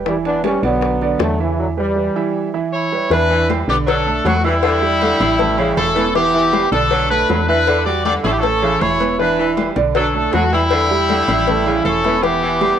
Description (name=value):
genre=latin, salsa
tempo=158 BPM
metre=4/4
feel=straight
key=unclear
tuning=A4 = 440 Hz
part: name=clear grand piano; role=accompaniment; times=0.0-12.8 s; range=D3 to E6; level=-21 LUFS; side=right 9 dB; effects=cassette tape, plate reverb
part: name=woody FM bass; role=bass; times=0.0-12.7 s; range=E1 to E2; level=-22 LUFS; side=left 1 dB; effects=none
part: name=brilliant trombone section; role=melody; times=0.1-2.5 s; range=C#3 to D4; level=-19 LUFS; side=equal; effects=cassette tape, plate reverb
part: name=bongos and cowbell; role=percussion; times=0.1-12.8 s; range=none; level=-23 LUFS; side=left 13 dB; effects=none
part: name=congas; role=percussion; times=0.1-12.8 s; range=none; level=-27 LUFS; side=left 10 dB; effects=none
part: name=timbales and agogo bells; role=percussion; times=0.3-12.8 s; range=none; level=-29 LUFS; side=right 10 dB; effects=none
part: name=bright horn section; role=melody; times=2.7-12.8 s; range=G3 to D5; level=-17 LUFS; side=left 2 dB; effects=cassette tape, plate reverb
part: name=clear saxophone section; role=second line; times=3.3-12.7 s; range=C#3 to F#3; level=-22 LUFS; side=equal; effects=cassette tape, plate reverb
room=moderate studio reverb, RT60 0.6 s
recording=home recording on cassette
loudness=-14 LUFS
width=side -9 dB against mid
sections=0.0-3.1 A section; 3.1-12.8 B section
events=break 1.6-3.1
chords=0.1 Em7; 0.8 Bm; 1.6 Em; 3.1 Em7; 3.9 Bm7; 4.6 Em7; 5.4 A7; 6.2 Em7; 6.9 Bm7; 7.7 Em7; 8.4 A; 9.2 Em7; 10.0 Bm7; 10.7 Em7; 11.5 A7; 12.2 Em